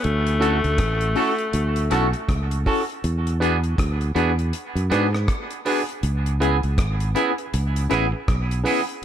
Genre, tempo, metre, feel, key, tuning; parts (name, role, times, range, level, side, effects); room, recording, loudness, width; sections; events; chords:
lovers rock reggae; 80 BPM; 4/4; swing 60% on 16ths; A major; A4 = 441 Hz
growling alto saxophone; melody; 0.0-2.7 s; A3; -25 LUFS; left 3 dB; tape echo
fingered electric bass; bass; 0.0-8.6 s; G#1 to G#2; -22 LUFS; equal
deep reggae drum kit; drums; 0.0-9.0 s; hi-hat, kick drum, rim click; -28 LUFS; equal; gated reverb, dub echo
tine electric piano; accompaniment; 0.4-8.8 s; C#4 to B4; -27 LUFS; left 4 dB; overdrive, fast stereo tremolo
twangy electric guitar; stabs; 0.4-8.8 s; B3 to A4; -26 LUFS; right 7 dB; dub echo
studio ambience; -19 LUFS; side -10 dB against mid
0.0-9.0 A section
0.0 Dmaj7; 3.0 E7; 6.0 Amaj9 (rootless)